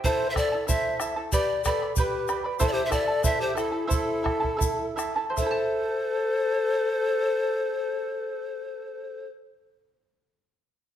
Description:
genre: andean folk, Andean ensemble.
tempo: 76-94 BPM.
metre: 2/4.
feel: straight.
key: A minor.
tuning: A4 = 440 Hz.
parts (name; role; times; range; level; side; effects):
breathy bright pan flute; melody; 0.0-9.3 s; A4 to E5; -28 LUFS; left 1 dB; none.
breathy bright large quena; second line; 0.0-9.3 s; E4 to C5; -30 LUFS; left 3 dB; none.
charango; accompaniment; 0.0-9.5 s; E4 to B5; -29 LUFS; right 3 dB; none.
bombo; percussion; 0.0-5.7 s; none; -29 LUFS; right 2 dB; none.
tube shaker; percussion; 0.1-5.7 s; none; -37 LUFS; left 7 dB; none.
room: moderate recital hall reverb, RT60 1.4 s.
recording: none.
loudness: -24 LUFS.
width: side -10 dB against mid.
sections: 0.0-5.4 A section; 5.4-8.5 B section.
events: slowing down 2.6-5.4.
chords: 0.0 Am; 1.3 G; 2.6 Am.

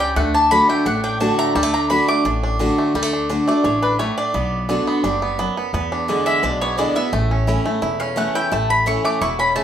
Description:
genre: bluegrass.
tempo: 172 BPM.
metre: 4/4.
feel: straight.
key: D major.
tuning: A4 = 440 Hz.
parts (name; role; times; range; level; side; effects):
mandolin; melody; 0.0-9.6 s; B4 to D6; -20 LUFS; left 1 dB; none.
picked steel-string acoustic guitar; accompaniment; 0.0-9.6 s; E2 to F#4; -22 LUFS; equal; none.
bluegrass banjo; arpeggios; 0.0-9.6 s; D3 to G4; -22 LUFS; right 1 dB; none.
upright bass; bass; 0.0-9.6 s; E1 to E2; -25 LUFS; equal; none.
room: wet studio reverb, RT60 0.5 s.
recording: band playing live in one room.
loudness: -16 LUFS.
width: side -9 dB against mid.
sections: 0.0-2.9 A section; 2.9-9.6 B section.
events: mandolin solo 2.9-9.6.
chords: 0.2 D; 4.3 Bm; 5.7 E7; 7.1 A.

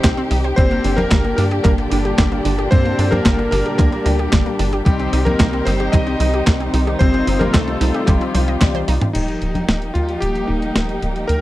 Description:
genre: italo disco.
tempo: 112 BPM.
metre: 4/4.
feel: straight.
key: G minor.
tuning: A4 = 440 Hz.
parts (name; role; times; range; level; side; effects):
clear electric grand piano; melody; 0.0-11.4 s; G3 to Eb5; -23 LUFS; left 1 dB; tape echo.
dark symphonic string section; sustained chords; 0.0-11.4 s; Bb2 to G4; -24 LUFS; right 1 dB; none.
analog pluck; arpeggios; 0.0-9.1 s; G3 to Eb5; -26 LUFS; right 3 dB; chorus, tape echo.
mellow synth brass; stabs; 0.0-11.4 s; G3 to D5; -26 LUFS; left 4 dB; chorus.
tight sequencer bass; bass; 0.0-11.4 s; Eb1 to G2; -20 LUFS; equal; none.
clean 12-bit digital drum machine; drums; 0.0-11.4 s; congas, crash cymbal, handclaps, hi-hat, snare drum, toms; -21 LUFS; equal; none.
electronic kick drum; drums; 0.0-8.7 s; none; -16 LUFS; equal; none.
room: little or no reverb.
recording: dry, close 1970s-style studio recording.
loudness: -14 LUFS.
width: side -16 dB against mid.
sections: 0.0-9.1 A section; 9.1-11.4 B section.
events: drum fill 8.6-9.1; band accent 8.6.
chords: 0.0 Cm; 0.6 Gm; 4.9 Cm; 9.1 Ebadd9.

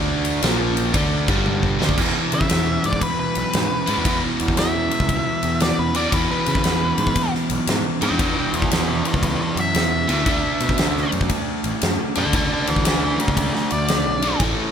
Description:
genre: blues rock power trio and southern rock.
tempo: 116 BPM.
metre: 4/4.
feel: swing 66% on 8ths.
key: unclear.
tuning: A4 = 440 Hz.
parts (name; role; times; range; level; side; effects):
biting overdriven guitar; riff; 0.0-14.7 s; E2 to D4; -23 LUFS; right 1 dB; none.
fuzz picked electric bass; bass; 0.0-14.5 s; G1 to C#3; -25 LUFS; equal; overdrive.
huge arena drum kit; drums; 0.2-14.6 s; crash cymbal, kick drum, ride cymbal, snare drum, toms; -22 LUFS; equal; none.
octave-fuzz lead guitar; melody; 2.3-14.4 s; F#4 to A5; -24 LUFS; left 1 dB; distortion.
room: little or no reverb.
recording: none.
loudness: -18 LUFS.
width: side -8 dB against mid.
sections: 0.0-2.0 A section; 2.0-14.7 B section.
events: drum fill 1.5-2.0; lead electric guitar solo 2.0-14.7.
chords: 0.4 A#5; 0.9 D5; 1.2 G5; 1.7 D5; 2.0 E5; 10.3 D.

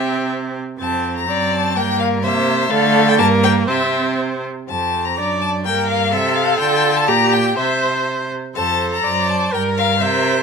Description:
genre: quick classical-period movement for string quartet.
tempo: 124 BPM.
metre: 2/4.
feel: straight.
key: unclear.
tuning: A4 = 440 Hz.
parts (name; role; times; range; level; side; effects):
rich violin; melody; 0.0-10.4 s; E5 to Bb5; -19 LUFS; left 5 dB; none.
warm violin; second line; 0.0-10.4 s; Bb3 to D5; -23 LUFS; left 4 dB; none.
clear viola; accompaniment; 0.0-10.4 s; A3 to D5; -21 LUFS; right 3 dB; none.
rich cello; bass; 0.0-10.4 s; F2 to D3; -21 LUFS; right 5 dB; none.
room: light reverb.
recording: minimal, uncompressed stereo recording.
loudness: -15 LUFS.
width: side -5 dB against mid.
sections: 0.0-4.7 A section; 4.7-10.4 A section.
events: none.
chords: 0.0 C; 0.8 F; 1.3 D7/F#; 1.8 Gm; 2.2 C7; 2.7 Dm; 3.2 Gm; 3.7 C; 4.7 F; 5.2 D/F#; 5.7 Gm; 6.1 C; 6.6 Dm; 7.1 Gm/Bb; 7.6 C; 8.6 F; 9.0 D7/F#; 9.5 Gm.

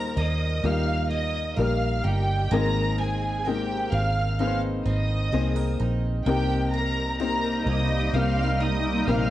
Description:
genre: pop ballad.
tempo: 64 BPM.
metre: 4/4.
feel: straight.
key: unclear.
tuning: A4 = 440 Hz.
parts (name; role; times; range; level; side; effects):
dark studio violin section; melody; 0.0-9.3 s; G4 to F6; -29 LUFS; right 1 dB; cassette tape, plate reverb.
warm upright piano; accompaniment; 0.0-9.3 s; Ab2 to C5; -29 LUFS; left 5 dB; cassette tape, plate reverb.
picked steel-string acoustic guitar; arpeggios; 0.0-9.3 s; C3 to Bb4; -36 LUFS; right 7 dB; cassette tape, plate reverb.
vintage muted fingered electric bass; bass; 0.0-9.3 s; G1 to Eb2; -26 LUFS; right 1 dB; none.
granular cloud pad; sustained chords; 7.2-9.3 s; C3 to Eb4; -28 LUFS; equal; built-in reverb, cassette tape.
room: moderate studio reverb, RT60 0.7 s.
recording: home recording on cassette.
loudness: -22 LUFS.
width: side -14 dB against mid.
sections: 0.0-9.3 A section.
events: none.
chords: 0.0 Eb; 2.5 Abadd9; 6.3 Cm7.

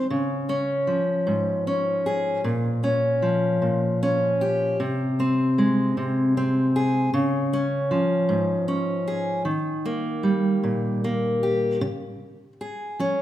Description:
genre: folk, solo fingerstyle acoustic guitar.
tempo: 51 BPM (dotted quarters).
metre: 6/8.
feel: straight.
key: unclear.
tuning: A4 = 442 Hz.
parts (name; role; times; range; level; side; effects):
fingerpicked steel-string acoustic guitar; solo; 0.0-13.2 s; Ab2 to Ab4; -21 LUFS; equal; none.
room: wet recital hall reverb, RT60 1.6 s.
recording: recorded in a church or concert hall.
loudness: -21 LUFS.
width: side -13 dB against mid.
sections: 0.0-11.8 A section; 11.8-13.2 B section.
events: none.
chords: 0.1 Db; 2.4 Bbm; 4.8 Ab/C; 7.1 Db; 9.5 Eb; 11.8 Db.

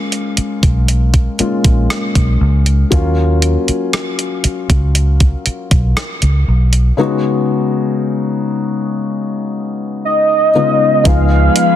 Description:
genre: contemporary R&B.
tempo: 59 BPM.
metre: 4/4.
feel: straight.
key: Eb minor.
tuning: A4 = 440 Hz.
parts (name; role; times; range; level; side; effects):
felt-muted upright piano; accompaniment; 0.0-11.8 s; Db3 to Bb4; -17 LUFS; left 3 dB; none.
gated 80s digital drum machine; drums; 0.1-11.8 s; hi-hat, kick drum, rim click; -15 LUFS; equal; none.
vintage muted fingered electric bass; bass; 0.4-11.5 s; Bb1 to Eb2; -12 LUFS; equal; none.
warm velvety synth lead; melody; 10.0-11.8 s; Eb5 to F5; -12 LUFS; right 1 dB; chorus.
glassy FM pad; sustained chords; 11.3-11.8 s; F3 to Cb5; -18 LUFS; right 1 dB; ensemble chorus, built-in reverb.
worn celesta; texture; 11.1-11.8 s; Ab5; -29 LUFS; right 1 dB; stereo widening, tape echo.
room: light reverb.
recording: dense, heavily limited modern master.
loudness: -12 LUFS.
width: side -11 dB against mid.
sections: 0.0-11.1 A section.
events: none.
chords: 0.0 Bbm7; 2.9 Ebm9; 7.0 Db9sus4; 11.1 Db7.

